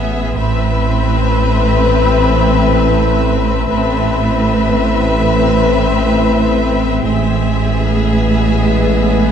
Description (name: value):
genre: cinematic, suspense film score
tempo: 72 BPM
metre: 4/4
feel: straight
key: A harmonic minor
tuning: A4 = 440 Hz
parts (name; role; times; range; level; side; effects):
- rich chamber violin section; melody; 0.0-9.3 s; E5; -22 LUFS; left 1 dB; none
- rich chamber violin section; second line; 0.0-9.3 s; G#4 to B4; -20 LUFS; left 4 dB; none
- warm symphonic viola section; accompaniment; 0.0-9.3 s; B3 to C4; -22 LUFS; left 1 dB; none
- rich chamber cello section; bass; 0.0-9.3 s; A2; -19 LUFS; right 3 dB; none
- rich chamber double bass section; bass; 0.0-9.3 s; A1; -18 LUFS; right 5 dB; none
- pure sine sub bass; drone; 0.0-9.3 s; A1; -19 LUFS; left 2 dB; none
- warm French horn section; sustained chords; 0.4-9.3 s; G#3 to B4; -20 LUFS; left 6 dB; none
- warm trombone section; sustained chords; 0.4-9.3 s; E3 to A3; -22 LUFS; right 6 dB; none
- rich chamber violin section; texture; 0.4-6.6 s; A5 to E6; -29 LUFS; left 9 dB; none
room: moderate scoring stage reverb, RT60 1.9 s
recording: dark, warm production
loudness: -11 LUFS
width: side -8 dB against mid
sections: 0.0-9.3 A section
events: none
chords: 0.4 Amadd9; 7.0 E/A